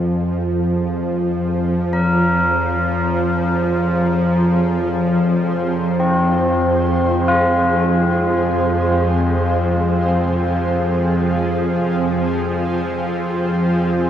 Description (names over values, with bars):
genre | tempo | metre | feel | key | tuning
dark ambient drone | free time | none | none | unclear | A4 = 439 Hz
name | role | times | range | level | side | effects
granular cloud pad | sustained chords | 0.2-14.1 s | C4 to C5 | -24 LUFS | right 1 dB | built-in reverb
bowed-like drone | drone | 0.0-14.1 s | F2 to F3 | -17 LUFS | equal | built-in reverb
tubular bells | arpeggios | 1.9-14.1 s | C4 to Bb4 | -21 LUFS | left 1 dB | tape echo
room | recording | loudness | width
wet huge ambient reverb, RT60 8.5 s | none | -15 LUFS | side -10 dB against mid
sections
0.0-14.1 A section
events
fade-in on ambient pad 0.0-14.1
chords
0.0 Fm